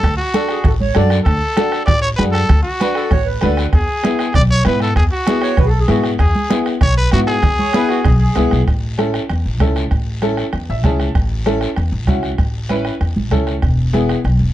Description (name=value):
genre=latin, cumbia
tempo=194 BPM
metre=4/4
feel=straight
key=A major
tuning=A4 = 440 Hz
part: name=growling trumpet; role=melody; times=0.0-8.3 s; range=F#4 to D5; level=-19 LUFS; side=equal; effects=none
part: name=upright bass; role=bass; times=0.0-14.5 s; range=E1 to G#2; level=-17 LUFS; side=equal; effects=none
part: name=bombo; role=percussion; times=0.0-14.4 s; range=none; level=-19 LUFS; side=right 1 dB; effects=none
part: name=congas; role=percussion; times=0.0-14.1 s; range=none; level=-22 LUFS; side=right 2 dB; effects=none
part: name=guiro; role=percussion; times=0.0-14.5 s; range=none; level=-33 LUFS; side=left 4 dB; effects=none
part: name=bright upright piano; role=accompaniment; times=0.3-14.2 s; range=B3 to A5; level=-19 LUFS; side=left 1 dB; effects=none
part: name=accordion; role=second line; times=0.5-8.6 s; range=F#4 to D5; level=-22 LUFS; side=right 4 dB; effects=none
room=light reverb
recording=dark, warm production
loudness=-13 LUFS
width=side -13 dB against mid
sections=0.0-8.7 A section; 8.7-14.5 B section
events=upright piano fill 10.5-11.2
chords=0.0 D; 3.7 Eadd9; 8.7 A; 13.6 E